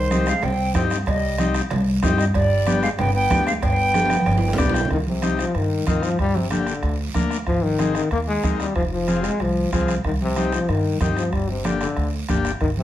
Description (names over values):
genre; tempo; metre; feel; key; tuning
latin, cumbia; 187 BPM; 4/4; straight; C minor from 4.9 s; A4 = 439 Hz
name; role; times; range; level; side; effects
silver concert flute; melody; 0.0-4.5 s; C5 to G5; -23 LUFS; right 1 dB; plate reverb
bright trombone; second line; 0.0-12.8 s; C3 to C4; -25 LUFS; left 2 dB; none
upright bass; bass; 0.0-12.8 s; F1 to G2; -24 LUFS; equal; none
combo organ; accompaniment; 0.1-12.5 s; Bb3 to G5; -25 LUFS; left 5 dB; none
bombo; percussion; 0.1-12.8 s; none; -27 LUFS; right 2 dB; none
congas; percussion; 0.1-12.8 s; none; -27 LUFS; right 2 dB; none
guiro; percussion; 0.1-12.8 s; none; -37 LUFS; right 6 dB; none
cowbell and timbales; percussion; 0.4-4.9 s; none; -31 LUFS; right 6 dB; none
room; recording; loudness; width
wet studio reverb, RT60 0.6 s; heard from further back in the room; -18 LUFS; side -12 dB against mid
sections
0.0-4.9 A section; 4.9-12.8 B section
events
drum fill 3.9-4.9; transistor combo organ fill 4.4-4.9; trombone solo 4.9-12.8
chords
0.0 Cm; 2.3 G; 4.9 Cm; 6.2 Gm; 7.5 Ab; 8.8 Fm; 10.0 Cm; 11.3 Gm